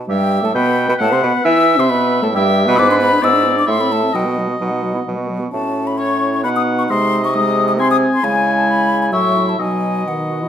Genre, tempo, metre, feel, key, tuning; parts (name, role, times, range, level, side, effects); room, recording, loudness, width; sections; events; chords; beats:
quick classical-period movement for wind quintet; 132 BPM; 3/4; rubato; E minor; A4 = 440 Hz
mellow hollow silver concert flute; melody; 0.0-10.5 s; F#5 to E6; -19 LUFS; left 5 dB
clear bassoon; bass; 0.0-10.5 s; G2 to E3; -20 LUFS; right 2 dB
warm oboe; second line; 0.1-10.5 s; B4 to G#5; -20 LUFS; left 2 dB
mellow French horn; accompaniment; 0.1-10.5 s; D#3 to E4; -20 LUFS; equal
mellow clarinet; accompaniment; 0.1-10.5 s; D#4 to E5; -25 LUFS; right 4 dB
wet stone room reverb, RT60 1.2 s; -13 LUFS; side -9 dB against mid
0.1-10.5 A section
0.1 Em/G; 1.0 B5/A; 1.5 E5; 2.3 Em/G; 2.8 E7/G#; 3.7 Am; 4.1 B; 5.5 F#m/A; 6.4 B; 6.9 G#/B#; 8.2 C#m; 9.1 F#m/A; 9.6 B
| 0.08 0.54 1.00 | 1.45 1.90 2.35 | 2.79 3.23 3.68 | 4.14 4.60 5.07 | 5.53 5.99 6.44 | 6.89 7.34 7.79 | 8.23 8.68 9.13 | 9.60 10.07